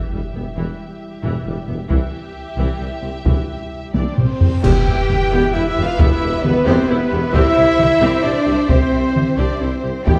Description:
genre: cinematic, epic orchestral film score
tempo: 133 BPM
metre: 3/4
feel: straight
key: E minor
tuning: A4 = 440 Hz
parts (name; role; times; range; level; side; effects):
- warm symphonic violin section; melody; 0.0-10.2 s; B4 to G5; -32 LUFS; equal; none
- warm symphonic violin section; second line; 0.0-10.2 s; G4 to E5; -32 LUFS; equal; none
- rich symphonic viola section; accompaniment; 0.0-10.2 s; E3 to G4; -28 LUFS; equal; none
- mellow French horn section; sustained chords; 0.0-10.2 s; G3 to G4; -24 LUFS; equal; none
- sub drop, reverse cymbal and impact; sound effects; 0.0-0.6, 4.3-6.0 s; none; -33 LUFS; equal; none
- warm studio cello section; bass; 0.1-10.2 s; C2 to G4; -30 LUFS; equal; none
- warm symphonic double bass section; bass; 0.1-10.1 s; E1 to E2; -26 LUFS; equal; none
- warm tuba; bass; 0.1-10.2 s; E1 to C2; -29 LUFS; equal; none
- taiko ensemble; drums; 1.9-10.2 s; none; -20 LUFS; equal; none
- cymbal swell, clash cymbals and concert bass drum; percussion; 1.9-5.5 s; none; -25 LUFS; equal; none
- warm trumpet section; stabs; 3.9-10.2 s; B4 to G5; -27 LUFS; equal; none
- mellow hollow small flute group; second line; 4.0-10.2 s; B4 to G5; -29 LUFS; equal; none
- mellow woodwind section; sustained chords; 4.6-10.2 s; E4 to E5; -32 LUFS; equal; none
room: moderate scoring stage reverb, RT60 1.6 s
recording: dark, warm production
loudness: -17 LUFS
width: mono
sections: 0.0-4.6 A section; 4.6-10.2 B section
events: impact 0.0-0.6, 4.6-6.0; drum fill 3.9-4.6; reverse cymbal 4.3-4.6; band accent 4.6-5.1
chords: 0.0 Em; 1.9 C; 4.6 Em; 7.3 C

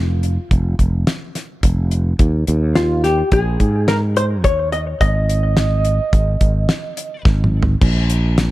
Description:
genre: progressive instrumental, band music in an uneven meter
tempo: 107 BPM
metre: 5/4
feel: straight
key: Eb mixolydian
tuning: A4 = 440 Hz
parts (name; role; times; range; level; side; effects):
- sustaining fretless electric bass; bass; 0.0-8.5 s; F1 to Ab2; -17 LUFS; equal; none
- damped 70s drum kit; drums; 0.2-8.5 s; crash cymbal, hi-hat, kick drum, snare drum, toms; -17 LUFS; equal; none
- hollow-body jazz guitar; melody; 2.8-7.2 s; F4 to Eb5; -21 LUFS; left 3 dB; analog delay
- breathy flugelhorn; second line; 2.8-7.2 s; F4 to Eb5; -25 LUFS; right 6 dB; none
room: small room ambience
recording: none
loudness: -14 LUFS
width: side -17 dB against mid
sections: 0.0-7.8 A section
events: drum fill 7.3-7.8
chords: 0.0 N.C.; 2.2 Ebsus4; 5.0 Ab5; 7.8 Bb5

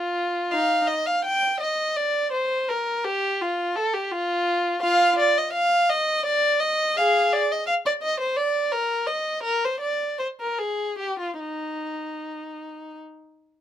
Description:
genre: classical, baroque-style suite movement for unaccompanied violin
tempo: 72-86 BPM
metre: 3/4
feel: rubato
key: Eb major from 4.8 s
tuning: A4 = 440 Hz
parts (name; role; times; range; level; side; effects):
- warm violin; solo; 0.0-13.0 s; Eb4 to G5; -22 LUFS; equal; none
room: light reverb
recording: minimal, uncompressed stereo recording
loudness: -21 LUFS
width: side -10 dB against mid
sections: 0.0-13.6 A section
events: none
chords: none

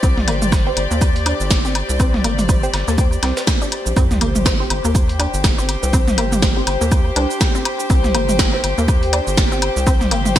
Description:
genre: minimal techno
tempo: 122 BPM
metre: 4/4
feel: swing 58% on 16ths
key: C minor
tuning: A4 = 439 Hz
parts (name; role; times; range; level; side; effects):
- resonant blip pluck; riff; 0.0-10.4 s; Bb3 to C5; -25 LUFS; equal; chorus, sidechain pumping, digital delay
- rubbery square bass; bass; 0.0-10.4 s; G1 to Eb2; -21 LUFS; equal; sidechain pumping
- dusty soul sampler-style drum kit; drums; 0.0-10.4 s; hi-hat, snare drum, tambourine; -31 LUFS; equal; sidechain pumping on perc, high-pass filter on perc, high-pass filter on snare, sidechain pumping on hats, high-pass filter on hats, gated reverb
- electronic kick drum; drums; 0.0-10.4 s; none; -16 LUFS; equal; overdrive
- minimal click drum kit; drums; 0.0-10.4 s; hi-hat, shaker, snare drum; -22 LUFS; equal; gated reverb
- electronic woodblock, toms and cowbell; percussion; 0.0-10.4 s; none; -24 LUFS; right 1 dB; gated reverb, ping-pong delay
- rich studio string section; texture; 0.0-10.4 s; G4 to G5; -23 LUFS; left 2 dB; sidechain pumping
- filtered dub chord stab; stabs; 0.7-8.6 s; C4 to C5; -28 LUFS; right 2 dB; phaser, ping-pong delay
- sub drop; sound effects; 4.1-5.9 s; none; -28 LUFS; equal; none
room: light reverb, digital ambience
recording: bright 1980s-style digital production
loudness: -14 LUFS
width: side -12 dB against mid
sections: 0.0-4.0 A section; 4.0-10.4 B section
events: drop 4.0-10.4; impact 4.0-5.9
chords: 0.0 C5

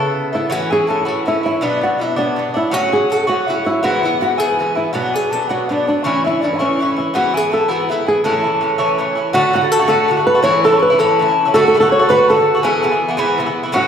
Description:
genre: celtic folk, Celtic jig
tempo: 109 BPM (dotted quarters)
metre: 6/8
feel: straight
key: A major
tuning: A4 = 440 Hz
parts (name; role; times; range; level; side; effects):
- flamenco guitar; melody; 0.0-13.9 s; C#4 to C#5; -16 LUFS; right 1 dB; none
- mellow hollow tin whistle; second line; 0.0-13.9 s; D5 to C#6; -20 LUFS; left 5 dB; none
- Irish bouzouki; accompaniment; 0.0-13.9 s; G#2 to A4; -18 LUFS; right 1 dB; none
room: wet recital hall reverb, RT60 1.6 s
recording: recorded in a church or concert hall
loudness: -13 LUFS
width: side -8 dB against mid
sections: 0.5-9.3 A section; 9.3-13.9 B section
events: none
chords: 0.0 Aadd9; 0.5 A; 1.6 Bm; 2.7 F#m; 3.8 E; 4.9 Bm; 6.0 A; 7.1 E; 8.2 A; 9.3 D; 10.4 A; 11.5 D; 12.6 E

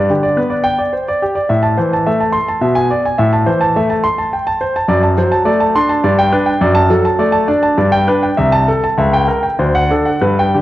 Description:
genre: classical, baroque-style suite movement for grand piano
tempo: 105 BPM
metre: 3/4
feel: rubato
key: G major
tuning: A4 = 440 Hz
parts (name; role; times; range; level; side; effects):
- clear concert grand piano; solo; 0.0-10.6 s; C2 to C6; -12 LUFS; equal; none
room: moderate concert hall reverb, RT60 1.8 s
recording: worn, warbling old tape, cassette tape, warbly pitch drift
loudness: -12 LUFS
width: side -15 dB against mid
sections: 0.0-10.6 A section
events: none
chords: 0.0 G; 1.5 Am; 2.6 E7/B; 3.2 Am; 4.9 D7/F#; 6.0 G; 6.6 D/F#; 7.8 G; 8.4 Am/C; 9.0 C#dim7; 9.6 D7

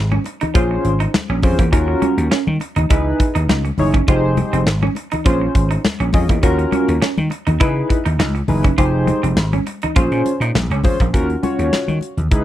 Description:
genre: early-eighties boogie funk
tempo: 102 BPM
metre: 4/4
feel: straight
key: Eb dorian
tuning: A4 = 440 Hz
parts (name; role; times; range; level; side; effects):
- vintage slap bass; bass; 0.0-12.4 s; F1 to Eb3; -18 LUFS; equal; none
- semi-hollow electric guitar; riff; 0.1-11.1 s; Bb3 to F4; -24 LUFS; right 5 dB; wide subtle chorus
- congas; percussion; 0.1-12.4 s; none; -25 LUFS; left 4 dB; none
- modern studio drum kit; drums; 0.3-12.4 s; hi-hat, kick drum, snare drum; -17 LUFS; equal; none
- chorused polysynth; accompaniment; 0.5-12.4 s; Db4 to Eb5; -20 LUFS; left 1 dB; tremolo
room: small room reverb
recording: dry, close 1970s-style studio recording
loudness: -14 LUFS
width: side -13 dB against mid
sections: 0.0-11.1 A section; 11.1-12.4 B section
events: none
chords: 0.0 Fm7 (rootless); 0.6 Bbm9; 1.7 Ebm9; 2.9 Dbm9; 4.1 Fm9; 5.3 Bbm9; 6.4 Ebm9; 7.6 Dbm9; 8.8 Fm9; 10.0 Bbm9; 11.1 Ebm9

